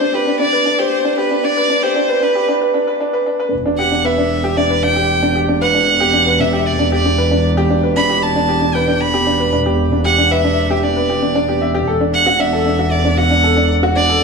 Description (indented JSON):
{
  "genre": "piano and strings electronica",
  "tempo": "115 BPM",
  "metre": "4/4",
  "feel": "straight",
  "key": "unclear",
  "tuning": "A4 = 439 Hz",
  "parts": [
    { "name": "rich violin", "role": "melody", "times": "0.0-14.2 s", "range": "B4 to B5", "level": "-17 LUFS", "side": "right 1 dB", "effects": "digital delay" },
    { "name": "warm upright piano", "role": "riff", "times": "0.0-14.2 s", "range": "D4 to E5", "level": "-16 LUFS", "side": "equal", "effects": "digital delay" },
    { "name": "dark chamber double bass section", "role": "bass", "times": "3.5-14.2 s", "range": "E1", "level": "-19 LUFS", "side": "right 1 dB", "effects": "none" }
  ],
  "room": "moderate recital hall reverb, RT60 1.8 s",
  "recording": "high-pass filter, small room ambience",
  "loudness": "-13 LUFS",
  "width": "side -4 dB against mid",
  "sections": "0.0-3.5 A section; 3.5-14.2 B section",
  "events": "build-up 0.0-3.5; filter sweep on violin 0.0-3.5; filter sweep 0.0-3.5; break 2.5-3.5; drop 3.5-14.2",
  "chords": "0.0 Gadd11/D; 3.5 Em7; 11.9 Dadd9/E"
}